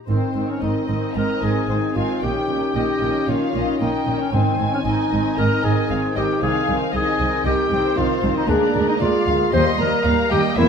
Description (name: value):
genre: quick classical-period movement for symphony orchestra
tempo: 114 BPM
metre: 4/4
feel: rubato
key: Ab major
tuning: A4 = 442 Hz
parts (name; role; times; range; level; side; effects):
- muted studio violin section; melody; 0.1-10.7 s; C5 to C6; -29 LUFS; left 4 dB; none
- breathy clarinet; second line; 0.1-10.7 s; C4 to C5; -23 LUFS; left 1 dB; none
- muted studio viola section; accompaniment; 0.1-10.7 s; Eb3 to Db4; -24 LUFS; right 2 dB; none
- dark French horn section; sustained chords; 0.1-10.7 s; Bb3 to Bb4; -26 LUFS; left 5 dB; none
- muted studio cello section; bass; 0.1-10.7 s; C2 to Bb2; -26 LUFS; right 3 dB; none
- muted studio double bass section; bass; 0.1-10.7 s; E1 to Eb2; -26 LUFS; right 3 dB; none
- muted studio violin section; second line; 1.2-10.7 s; Bb4 to Ab5; -27 LUFS; left 2 dB; none
- timpani; percussion; 4.3-5.1 s; Ab2; -28 LUFS; right 1 dB; none
room: moderate scoring stage reverb, RT60 1.6 s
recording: none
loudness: -17 LUFS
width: side -6 dB against mid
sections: 0.1-10.7 A section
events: none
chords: 0.1 Ab; 2.2 Eb7/Bb; 4.3 Ab; 6.4 Ab/C; 8.5 Bb7/D; 9.5 Eb